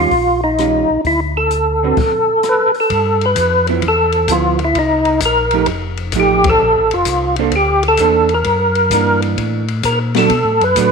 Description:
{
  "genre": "soul jazz organ trio",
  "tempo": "130 BPM",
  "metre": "4/4",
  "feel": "swing 67% on 8ths",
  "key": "unclear",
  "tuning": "A4 = 445 Hz",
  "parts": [
    { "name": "percussive tonewheel organ", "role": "melody", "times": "0.0-10.9 s", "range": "Eb4 to B4", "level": "-14 LUFS", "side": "equal", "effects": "slow rotary speaker, chorus vibrato" },
    { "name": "vintage hollow-body jazz guitar", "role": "accompaniment", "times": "0.0-10.9 s", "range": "D3 to C5", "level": "-20 LUFS", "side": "right 12 dB", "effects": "none" },
    { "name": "mellow tonewheel organ", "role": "bass", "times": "0.0-10.9 s", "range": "F1 to B2", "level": "-20 LUFS", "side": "left 1 dB", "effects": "slow rotary speaker" },
    { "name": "open jazz drum kit", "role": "drums", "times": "0.1-10.9 s", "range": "crash cymbal, hi-hat, kick drum, ride cymbal, rim click, snare drum", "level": "-23 LUFS", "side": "left 7 dB", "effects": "none" }
  ],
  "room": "moderate echo chamber reverb, RT60 1.6 s, studio reverb",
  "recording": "1960s-style stereo with parts hard left and right",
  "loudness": "-12 LUFS",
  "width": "side -5 dB against mid",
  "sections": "0.0-2.9 A section; 2.9-10.9 B section",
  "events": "band accent 6.4",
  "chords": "0.0 Eb9; 1.0 D5; 2.9 G13; 4.8 Cm7; 5.7 F9; 6.6 Bbmaj9; 8.5 F#7alt; 10.3 Bm7",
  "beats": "0.12 0.58 | 1.05 1.51 1.98 2.44 | 2.90 3.37 3.83 4.29 | 4.76 5.22 5.68 6.15 | 6.61 7.07 7.53 8.00 | 8.46 8.92 9.38 9.84 | 10.31 10.77"
}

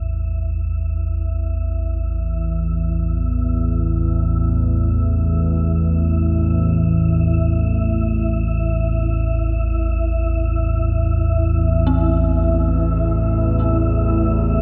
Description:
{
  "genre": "dark ambient drone",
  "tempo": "free time",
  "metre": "none",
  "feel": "none",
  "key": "unclear",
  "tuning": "A4 = 440 Hz",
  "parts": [
    { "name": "analog drone", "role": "drone", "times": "0.0-14.6 s", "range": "A1 to E2", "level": "-19 LUFS", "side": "equal", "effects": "lush chorus" },
    { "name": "wind-like tuned noise texture", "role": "texture", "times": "0.0-14.6 s", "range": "E4 to E5", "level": "-30 LUFS", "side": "equal", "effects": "built-in reverb, shimmer reverb" },
    { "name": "dark detuned synth bell", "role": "arpeggios", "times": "11.9-14.6 s", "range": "C4", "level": "-31 LUFS", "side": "equal", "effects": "chorus, phaser, diffuse ambient delay, shimmer reverb" }
  ],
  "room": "wet cathedral reverb, RT60 6.7 s",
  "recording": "dark, warm production",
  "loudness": "-19 LUFS",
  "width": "mono",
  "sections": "0.0-14.6 A section",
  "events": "fade-in on synth texture 0.0-14.6",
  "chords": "0.0 A5; 11.9 Am",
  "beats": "free time"
}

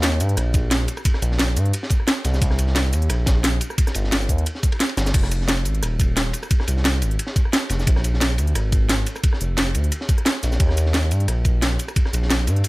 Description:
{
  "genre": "liquid drum and bass",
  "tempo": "176 BPM",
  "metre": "4/4",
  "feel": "straight",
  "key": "F dorian",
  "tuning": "A4 = 445 Hz",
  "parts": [
    { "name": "smooth synth bass", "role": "bass", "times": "0.0-12.6 s", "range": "Eb1 to G2", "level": "-20 LUFS", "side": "equal", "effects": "none" },
    { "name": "crunchy breakbeat drum kit", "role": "drums", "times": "0.0-12.7 s", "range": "ride cymbal, snare drum", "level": "-29 LUFS", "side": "equal", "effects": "high-pass filter on cymbals, high-pass filter on snare, high-pass filter on room" },
    { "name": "drum and bass drum kit", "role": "drums", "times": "0.0-12.7 s", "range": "crash cymbal, hi-hat, rim click, shaker, snare drum", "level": "-24 LUFS", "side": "equal", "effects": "none" },
    { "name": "electronic kick drum", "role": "drums", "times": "0.5-12.0 s", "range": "none", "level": "-19 LUFS", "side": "equal", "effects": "none" }
  ],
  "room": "little or no reverb",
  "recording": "none",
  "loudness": "-18 LUFS",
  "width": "side -21 dB against mid",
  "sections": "0.0-12.7 A section",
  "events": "kick drops out 4.8-5.1",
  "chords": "none",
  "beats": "0.03 0.37 0.71 | 1.05 1.40 1.74 2.08 | 2.42 2.76 3.10 3.44 | 3.78 4.12 4.46 4.80 | 5.14 5.49 5.83 6.17 | 6.51 6.85 7.19 7.53 | 7.87 8.21 8.55 8.89 | 9.23 9.58 9.92 10.26 | 10.60 10.94 11.28 11.62 | 11.96 12.30 12.64"
}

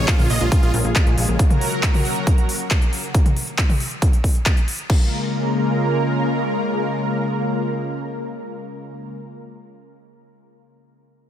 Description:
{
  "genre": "uplifting trance",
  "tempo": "137 BPM",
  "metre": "4/4",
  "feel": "straight",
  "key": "Bb minor",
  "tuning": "A4 = 440 Hz",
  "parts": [
    { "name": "supersaw chords", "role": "melody", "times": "0.0-0.7 s", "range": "F4 to Eb5", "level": "-29 LUFS", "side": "right 2 dB", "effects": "sidechain pumping, diffuse ambient delay" },
    { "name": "analog string pad", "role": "sustained chords", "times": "0.0-9.2 s", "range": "Db3 to Bb4", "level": "-23 LUFS", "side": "left 1 dB", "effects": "ensemble chorus, sidechain pumping" },
    { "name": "plucky analog bass", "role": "bass", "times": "0.0-1.4 s", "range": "Bb1", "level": "-20 LUFS", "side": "equal", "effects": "sidechain pumping" },
    { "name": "big-room dance drum kit", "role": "drums", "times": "0.1-5.0 s", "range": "crash cymbal, handclaps, hi-hat, toms", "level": "-25 LUFS", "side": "left 1 dB", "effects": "none" },
    { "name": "electronic kick drum", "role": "drums", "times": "0.1-5.0 s", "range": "none", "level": "-17 LUFS", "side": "equal", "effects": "none" }
  ],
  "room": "moderate cathedral reverb, RT60 4.5 s",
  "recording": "dreamy mix soaked in reverb",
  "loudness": "-17 LUFS",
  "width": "side -10 dB against mid",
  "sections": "0.0-4.9 A section; 4.9-8.4 B section",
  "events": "drop 0.0-4.9",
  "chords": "0.0 Bbm7; 1.4 Gb; 4.9 Bbm7",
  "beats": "0.08 0.52 0.96 | 1.39 1.83 2.27 2.71 | 3.15 3.58 4.02 4.46 | 4.90 5.33 5.77 6.21 | 6.65 7.09 7.53 7.96"
}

